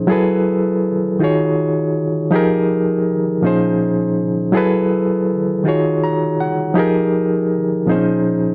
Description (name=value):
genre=R&B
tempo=54 BPM (dotted quarters)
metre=6/8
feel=straight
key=F phrygian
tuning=A4 = 445 Hz
part: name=barky reed electric piano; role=solo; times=0.0-8.5 s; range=Bb2 to Bb5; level=-17 LUFS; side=equal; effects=overdrive, fast tremolo
room=little or no reverb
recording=dry, close 1970s-style studio recording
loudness=-17 LUFS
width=mono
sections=0.0-8.5 A section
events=reed electric piano fill 5.7-6.8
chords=0.1 Gbm11; 1.2 Ebm11; 2.3 Fm11; 3.4 Bbm11; 4.5 Gbm11; 5.7 Ebm11; 6.8 Fm11; 7.9 Bbm11